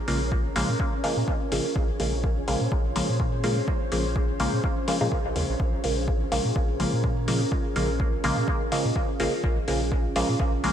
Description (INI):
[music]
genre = dub techno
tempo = 125 BPM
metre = 4/4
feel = swing 55% on 16ths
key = Bb minor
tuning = A4 = 440 Hz
[part]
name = deep dark ambient pad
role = sustained chords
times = 0.0-10.7 s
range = Db4 to Db5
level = -32 LUFS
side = equal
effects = chorus, built-in reverb, sidechain pumping
[part]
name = flickering grainy texture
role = texture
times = 0.0-10.7 s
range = Db4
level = -38 LUFS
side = right 1 dB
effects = built-in reverb, lush chorus, sidechain pumping
[part]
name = filtered dub chord stab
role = stabs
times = 0.1-10.7 s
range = Db3 to Bb3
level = -28 LUFS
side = equal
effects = chorus, phaser, sidechain pumping, dub echo
[part]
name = soft dub sub bass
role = bass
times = 0.1-10.7 s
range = Ab1 to Bb2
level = -29 LUFS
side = equal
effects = sidechain pumping
[part]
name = electronic hi-hat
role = drums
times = 0.1-10.7 s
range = none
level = -36 LUFS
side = left 3 dB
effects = none
[part]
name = electronic kick drum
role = drums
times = 0.3-10.5 s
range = none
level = -28 LUFS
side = equal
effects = none
[sound]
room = light reverb, digital ambience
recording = none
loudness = -23 LUFS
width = side -9 dB against mid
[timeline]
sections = 0.0-10.7 A section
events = none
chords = 0.0 Bbm7